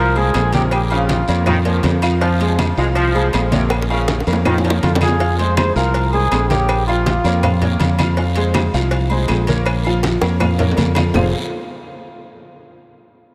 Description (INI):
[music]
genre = latin, salsa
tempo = 161 BPM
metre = 4/4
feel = straight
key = F minor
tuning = A4 = 440 Hz
[part]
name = bright trombone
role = melody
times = 0.0-1.6, 4.8-7.6 s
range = F4 to C5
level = -24 LUFS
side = equal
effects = delay
[part]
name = brilliant trombone section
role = second line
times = 0.0-4.9 s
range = C3 to Ab3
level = -26 LUFS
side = equal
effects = none
[part]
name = clear upright piano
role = accompaniment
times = 0.0-11.3 s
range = F3 to F5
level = -25 LUFS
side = equal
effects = analog chorus
[part]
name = fingered electric bass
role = bass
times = 0.0-11.3 s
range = F1 to F2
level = -20 LUFS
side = equal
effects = none
[part]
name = agogo bells and timbales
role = percussion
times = 0.2-11.2 s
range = none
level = -29 LUFS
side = equal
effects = none
[part]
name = congas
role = percussion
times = 0.2-11.2 s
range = none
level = -26 LUFS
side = equal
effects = none
[part]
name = claves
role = percussion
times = 0.3-11.2 s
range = none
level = -36 LUFS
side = equal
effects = none
[part]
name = cowbell and bongos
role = percussion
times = 0.3-11.2 s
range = none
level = -29 LUFS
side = equal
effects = none
[part]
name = guiro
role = percussion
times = 0.3-11.2 s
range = none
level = -34 LUFS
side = equal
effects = none
[sound]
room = moderate huge ambient reverb, RT60 4.3 s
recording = dreamy mix soaked in reverb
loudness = -17 LUFS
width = mono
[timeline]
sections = 0.0-5.2 A section; 5.2-11.2 B section; 11.2-12.6 C section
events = drum fill 3.7-5.2, 10.0-11.2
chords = 0.0 Fm; 0.7 Bbm; 2.2 Fm; 3.7 Bbm; 5.2 Fm; 6.7 Bbm; 8.2 Fm; 9.7 Bbm; 11.2 F5